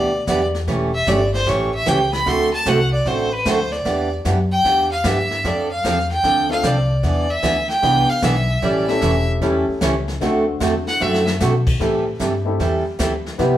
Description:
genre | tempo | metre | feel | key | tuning
country, western swing | 151 BPM | 4/4 | swing 67% on 8ths | unclear | A4 = 440 Hz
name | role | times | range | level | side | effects
clear fiddle | second line | 0.0-11.3 s | B4 to C6 | -20 LUFS | equal | none
picked steel-string acoustic guitar | accompaniment | 0.0-13.6 s | C3 to A4 | -21 LUFS | right 2 dB | none
upright bass | bass | 0.0-13.6 s | E1 to B2 | -23 LUFS | left 1 dB | none
jazz brush drum kit | drums | 0.3-13.6 s | brushed snare drum, crash cymbal, hi-hat, kick drum, snare drum | -27 LUFS | left 1 dB | none
warm upright piano | accompaniment | 6.5-13.6 s | G#3 to B4 | -23 LUFS | left 3 dB | none
room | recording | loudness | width
wet large studio reverb, RT60 0.9 s | band playing live in one room | -16 LUFS | side -12 dB against mid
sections
0.0-13.6 A section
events
fiddle solo 0.0-13.6; drum fill 11.0-11.4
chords
0.0 Em7; 0.7 A7/E; 2.3 D7; 3.9 Em7; 5.4 Dm7; 7.0 E7; 8.6 A7; 10.2 D7; 11.8 Am7

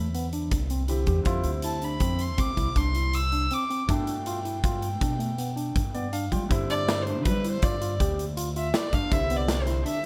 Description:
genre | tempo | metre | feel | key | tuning
progressive instrumental, band music in an uneven meter | 160 BPM | 7/4 | straight | G mixolydian | A4 = 442 Hz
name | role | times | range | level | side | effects
clear grand piano | accompaniment | 0.0-10.1 s | B2 to G5 | -38 LUFS | equal | none
overdriven tine electric piano | arpeggios | 0.0-10.0 s | A3 to G4 | -35 LUFS | equal | none
upright bass | bass | 0.0-9.8 s | C2 to G3 | -31 LUFS | equal | none
big rock drum kit | drums | 0.1-9.9 s | hi-hat, kick drum, snare drum | -32 LUFS | equal | none
dark violin | melody | 1.6-10.1 s | B4 to E6 | -33 LUFS | equal | delay
room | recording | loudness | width
light reverb | none | -27 LUFS | mono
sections
0.0-6.5 A section; 6.5-10.1 B section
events
grand piano fill 5.8-6.5; violin solo 6.5-10.1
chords
0.0 C; 1.3 F5; 3.9 G7; 6.5 G7sus4; 9.1 Cmaj7

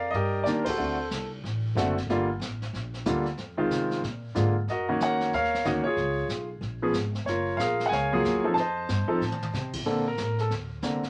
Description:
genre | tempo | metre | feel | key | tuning
jazz piano trio | 185 BPM | 4/4 | swing 62% on 8ths | unclear | A4 = 440 Hz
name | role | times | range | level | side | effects
warm baby grand piano | melody | 0.0-11.0 s | D3 to A5 | -28 LUFS | equal | none
upright bass | bass | 0.0-11.1 s | F#1 to C3 | -34 LUFS | equal | none
jazz brush drum kit | drums | 0.1-11.1 s | brushed snare drum, crash cymbal, hi-hat, kick drum, ride cymbal, snare drum, toms | -40 LUFS | equal | none
room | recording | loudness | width
light reverb | none | -28 LUFS | mono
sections
0.0-9.9 A section; 9.9-11.1 B section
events
band accent 0.6; drum fill 9.2-9.5; grand piano solo 9.9-11.1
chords
0.0 Ebmaj7; 0.8 D7; 2.1 Gm7; 3.4 Fm7; 4.0 Bb7; 4.7 Ebm7; 6.0 Db7; 7.3 Gbmaj9; 8.6 F7; 9.9 Bbmaj9

